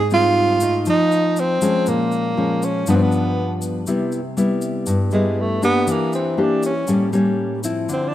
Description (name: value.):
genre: bossa nova.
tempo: 120 BPM.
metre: 4/4.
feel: straight.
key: C major from 3.9 s.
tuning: A4 = 441 Hz.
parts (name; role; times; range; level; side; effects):
breathy tenor saxophone; melody; 0.0-8.1 s; Ab3 to F4; -20 LUFS; right 2 dB; none.
nylon-string guitar; accompaniment; 0.0-8.1 s; G2 to G4; -19 LUFS; left 2 dB; none.
tube shaker; percussion; 0.1-8.1 s; none; -35 LUFS; left 3 dB; none.
room: light reverb, studio ambience.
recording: rough home demo mix.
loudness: -17 LUFS.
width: side -12 dB against mid.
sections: 0.0-3.9 A section; 3.9-8.1 B section.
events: tenor saxophone solo 3.9-8.1.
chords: 0.0 Abmaj7; 0.9 F7; 1.9 Bbm7; 2.9 G7; 3.9 Cmaj7; 5.9 Em7b5; 6.9 A7b9.